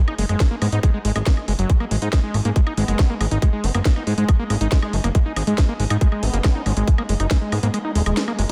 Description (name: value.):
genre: psychedelic trance.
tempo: 139 BPM.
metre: 4/4.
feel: straight.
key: G# minor.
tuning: A4 = 443 Hz.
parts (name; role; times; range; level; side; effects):
dark studio string section; texture; 0.0-8.5 s; D#4 to D#5; -40 LUFS; equal; none.
overdriven acid bass; riff; 0.1-8.5 s; F#3 to D#4; -28 LUFS; equal; sidechain pumping, tape echo.
drum and bass drum kit; drums; 0.1-8.5 s; hi-hat, snare drum, woodblock; -31 LUFS; equal; none.
fat analog bass; bass; 0.2-8.5 s; D#1 to G#2; -22 LUFS; equal; tube saturation.
electronic kick drum; drums; 0.4-7.4 s; none; -19 LUFS; equal; none.
formant-sweep wobble bass; second line; 0.6-8.1 s; G#3 to C#4; -38 LUFS; equal; none.
swell; sound effects; 7.9-8.5 s; none; -33 LUFS; equal; none.
room: light reverb.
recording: none.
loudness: -20 LUFS.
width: mono.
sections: 0.0-8.5 A section.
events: kick drops out 7.7-8.5.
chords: 0.0 G#5.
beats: 0.40 0.83 1.26 | 1.70 2.13 2.56 2.99 | 3.42 3.85 4.29 4.72 | 5.15 5.58 6.01 6.44 | 6.88 7.31 7.74 8.17.